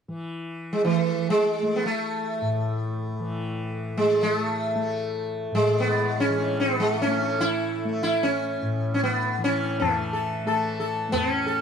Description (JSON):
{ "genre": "indian classical, Hindustani", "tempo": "free time", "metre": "none", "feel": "none", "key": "A raga hamsadhwani", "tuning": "A4 = 441 Hz", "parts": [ { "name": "tanpura", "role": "drone", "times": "0.1-11.6 s", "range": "A2 to A3", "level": "-30 LUFS", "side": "left 2 dB", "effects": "none" }, { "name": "sitar", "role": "melody", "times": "0.7-11.6 s", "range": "E3 to A4", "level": "-24 LUFS", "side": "right 1 dB", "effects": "none" }, { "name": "tabla", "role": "percussion", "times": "9.8-11.4 s", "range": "none", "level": "-27 LUFS", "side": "left 5 dB", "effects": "none" } ], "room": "moderate small room reverb, RT60 0.5 s", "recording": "dark, warm production", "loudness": "-22 LUFS", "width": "side -7 dB against mid", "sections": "0.1-9.8 A section; 9.8-11.6 B section", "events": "none", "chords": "none" }